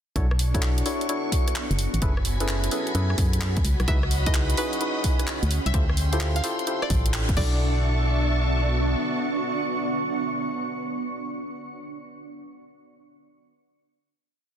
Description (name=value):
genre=UK garage, two-step garage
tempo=129 BPM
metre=4/4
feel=swing 66% on 16ths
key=B dorian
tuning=A4 = 440 Hz
part: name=soft string machine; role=sustained chords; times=0.2-10.4 s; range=D4 to C#6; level=-33 LUFS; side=equal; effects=ensemble chorus, sidechain pumping
part: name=percussive organ stab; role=stabs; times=0.2-10.4 s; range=C#4 to D5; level=-31 LUFS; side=left 1 dB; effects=chorus, dub echo
part: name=organ-like FM bass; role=bass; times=0.2-9.0 s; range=F#1 to F#2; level=-24 LUFS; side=equal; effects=none
part: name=electronic kick drum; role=drums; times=0.2-7.5 s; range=none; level=-25 LUFS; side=equal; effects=none
part: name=garage drum kit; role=drums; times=0.2-7.5 s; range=crash cymbal, handclaps, hi-hat, rim click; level=-31 LUFS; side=equal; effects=none
part: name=granular cloud pad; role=texture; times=1.0-10.8 s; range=B3 to C#6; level=-31 LUFS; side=right 2 dB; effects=built-in reverb, sidechain pumping
part: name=string-like resonator pluck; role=melody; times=3.9-10.4 s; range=B4 to F5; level=-34 LUFS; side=right 1 dB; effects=chorus, phaser, tape echo
room=light reverb, digital ambience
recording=dense, heavily limited modern master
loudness=-22 LUFS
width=side -9 dB against mid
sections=0.2-7.6 drop; 7.6-11.3 final chord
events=drop 0.2-7.6; band accent 7.1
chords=0.2 Bm11; 2.0 F#m11; 3.6 C#m11; 5.5 Dm11; 7.4 Bm11